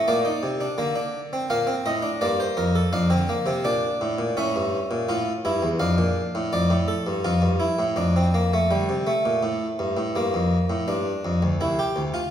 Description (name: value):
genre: classical, baroque-style 3-part fugue for harpsichord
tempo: 83 BPM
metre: 4/4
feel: straight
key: G minor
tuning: A4 = 440 Hz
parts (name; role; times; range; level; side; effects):
- harpsichord; solo; 0.0-12.3 s; C2 to F5; -21 LUFS; equal; none
room: wet recital hall reverb, RT60 1.6 s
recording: heard from further back in the room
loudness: -21 LUFS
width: side -10 dB against mid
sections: 0.0-8.7 A section; 8.7-12.3 B section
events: none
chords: 0.1 Bbadd9; 1.5 Gm; 2.9 Dm/F; 4.4 A7; 5.8 Dm/F; 8.7 N.C.; 10.2 Gm; 11.6 C